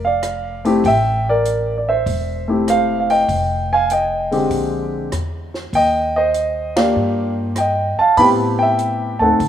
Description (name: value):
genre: jazz piano trio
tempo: 98 BPM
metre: 4/4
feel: swing 69% on 8ths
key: unclear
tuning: A4 = 441 Hz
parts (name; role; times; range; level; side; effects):
- warm grand piano; melody; 0.0-9.5 s; D3 to B5; -15 LUFS; equal; none
- upright bass; bass; 0.0-9.5 s; E1 to A2; -25 LUFS; equal; none
- compact cocktail drum kit; drums; 0.2-9.5 s; hi-hat, kick drum, ride cymbal, rim click, snare drum; -28 LUFS; right 1 dB; none
room: light reverb, small room reverb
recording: rough home demo mix, studio reverb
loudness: -15 LUFS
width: side -10 dB against mid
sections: 0.0-9.5 A section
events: band accent 6.6-7.0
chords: 0.0 Bbadd9 (rootless); 0.8 Am7; 3.3 Fm9; 4.5 Bb13; 5.7 Ebmaj9; 8.2 Am9